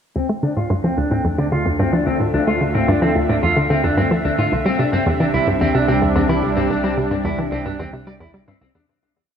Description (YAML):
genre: ambient, sequencer-driven space music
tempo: 110 BPM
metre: 4/4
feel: straight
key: D minor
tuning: A4 = 441 Hz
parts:
  - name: lush unison pad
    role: sustained chords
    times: 0.2-8.9 s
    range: C3 to E5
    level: -22 LUFS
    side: right 1 dB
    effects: chorus
  - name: electric guitar at the edge of break-up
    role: arpeggios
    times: 0.2-8.8 s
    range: C4 to D5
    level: -21 LUFS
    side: moving between left 5 dB and right 2 dB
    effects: auto-pan, low-pass filter, ping-pong delay
  - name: hollow square pluck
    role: riff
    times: 0.2-8.9 s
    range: C2 to A3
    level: -20 LUFS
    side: equal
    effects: chorus, ping-pong delay
  - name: analog drone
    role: bass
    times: 0.8-8.9 s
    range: C2 to D2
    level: -28 LUFS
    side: equal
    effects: chorus
room: wet concert hall reverb, RT60 2.1 s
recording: none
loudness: -16 LUFS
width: side -8 dB against mid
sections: 0.2-8.9 A section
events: fade-in on analog synth pad 0.2-8.9; filter sweep on synth arpeggio sound 0.2-8.9; fade-out 6.0-8.9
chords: 0.2 Dm7; 4.5 Cadd9